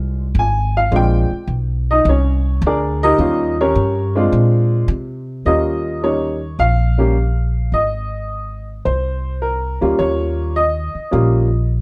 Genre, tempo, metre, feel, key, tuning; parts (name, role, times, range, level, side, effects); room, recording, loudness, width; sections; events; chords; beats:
jazz piano trio; 106 BPM; 4/4; swing 69% on 8ths; Eb mixolydian; A4 = 439 Hz
warm upright piano; melody; 0.0-11.7 s; G3 to Ab5; -20 LUFS; equal
upright bass; bass; 0.0-11.8 s; Ab1 to C3; -20 LUFS; equal
light reverb; dark, warm production; -17 LUFS; mono
0.0-5.5 A section; 5.5-11.8 B section
upright piano solo 0.0-5.5
0.0 Bb9; 3.2 Eb9; 4.3 Bb9; 5.5 Eb9; 7.7 Abadd9; 10.0 Eb9
0.36 | 0.92 1.49 2.06 2.63 | 3.19 3.76 4.33 4.89 | 5.46 6.03 6.59 7.16 | 7.73 8.29 8.86 9.43 | 9.99 10.56 11.12 11.69